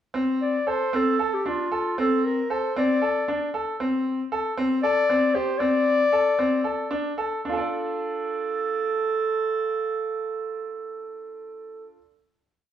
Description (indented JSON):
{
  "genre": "contemporary instrumental, chamber music in an uneven meter",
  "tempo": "230 BPM (eighths)",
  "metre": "7/8",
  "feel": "straight",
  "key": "D minor",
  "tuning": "A4 = 440 Hz",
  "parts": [
    { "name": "bright grand piano", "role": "arpeggios", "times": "0.1-12.1 s", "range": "C4 to D5", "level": "-26 LUFS", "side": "equal", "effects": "none" },
    { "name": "warm clarinet", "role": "melody", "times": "0.4-11.9 s", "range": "F4 to D5", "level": "-24 LUFS", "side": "equal", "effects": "none" }
  ],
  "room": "wet studio reverb, RT60 0.9 s",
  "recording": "heard from further back in the room",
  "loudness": "-22 LUFS",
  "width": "side -10 dB against mid",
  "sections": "0.1-7.4 A section; 7.4-11.1 final chord",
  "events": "slowing down 3.8-7.4",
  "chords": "0.1 Bbmaj9/C (rootless); 3.8 Am; 5.6 D5; 7.4 Dm",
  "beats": "| 0.14 0.40 0.66 0.93 1.19 1.45 1.72 | 1.98 2.24 2.50 2.76 3.02 3.28 3.54 | 3.80 4.05 4.31 4.57 4.83 5.08 5.34 | 5.60 5.86 6.12 6.38 6.65 6.91 7.18 | 7.45 7.71 7.98 8.24 8.50 8.76 9.02 | 9.28 9.54 9.79 10.06 10.32 10.58 10.84"
}